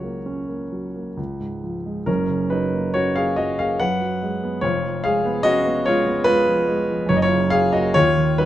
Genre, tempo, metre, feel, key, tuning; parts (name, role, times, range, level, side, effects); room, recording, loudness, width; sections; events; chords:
classical, romantic character piece for solo piano; 65-74 BPM; 3/4; rubato; F# major; A4 = 439 Hz
warm grand piano; solo; 0.0-8.5 s; E#1 to F#5; -18 LUFS; equal
light reverb; close, detailed microphones; -18 LUFS; side -13 dB against mid
0.0-8.5 A section
0.0 F#/C#; 1.2 C#; 2.1 F#; 3.8 G#m7/F#; 4.6 C#7/E#; 7.1 F#